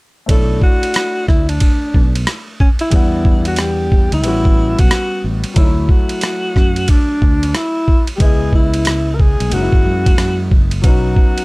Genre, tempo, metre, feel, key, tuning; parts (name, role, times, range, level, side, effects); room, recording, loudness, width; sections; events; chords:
hip hop, jazz-hop; 91 BPM; 4/4; swing 63% on 16ths; B minor; A4 = 440 Hz
breathy alto saxophone; melody; 0.3-11.4 s; C#4 to A#4; -19 LUFS; equal
dark grand piano; accompaniment; 0.3-11.4 s; F#3 to F#5; -24 LUFS; left 3 dB
fretless electric bass; bass; 0.3-11.1 s; F#1 to F#2; -18 LUFS; equal; lush chorus
boom bap sampler-style drum kit; drums; 0.3-11.4 s; hi-hat, kick drum, ride cymbal, rim click; -14 LUFS; equal
little or no reverb; -12 LUFS; side -24 dB against mid
0.3-11.4 A section
0.3 Bm11; 2.9 Em9; 4.2 A13; 5.6 Dmaj9; 8.2 C#m9; 9.5 F#9; 10.8 B